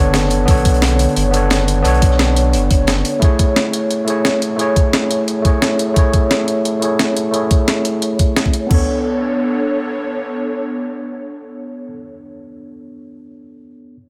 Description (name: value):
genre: liquid drum and bass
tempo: 175 BPM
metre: 4/4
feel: swing 53% on 16ths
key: B dorian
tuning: A4 = 440 Hz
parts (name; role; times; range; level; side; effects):
- overdriven tine electric piano; accompaniment; 0.0-14.0 s; A3 to C#5; -21 LUFS; equal; low-pass filter, delay
- airy breathy pad; sustained chords; 0.0-11.9 s; D3 to C#5; -26 LUFS; equal; chorus, sidechain pumping
- warm sub bass; bass; 0.0-3.0 s; F#1 to B1; -19 LUFS; equal; none
- breakbeat sampler-style drum kit; drums; 0.1-8.6 s; hi-hat, snare drum; -22 LUFS; equal; studio reverb
- crunchy breakbeat drum kit; drums; 0.1-3.1 s; hi-hat, snare drum; -29 LUFS; equal; high-pass filter on hats, studio reverb, high-pass filter on snare, high-pass filter on room
- drum and bass drum kit; drums; 0.5-8.8 s; crash cymbal, kick drum, toms; -16 LUFS; equal; studio reverb
room: light reverb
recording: none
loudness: -16 LUFS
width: mono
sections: 0.0-8.7 A section; 8.7-11.4 B section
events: filter sweep on tine electric piano 0.0-8.7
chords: 0.0 Bm9; 3.2 Amaj7; 8.7 Bm9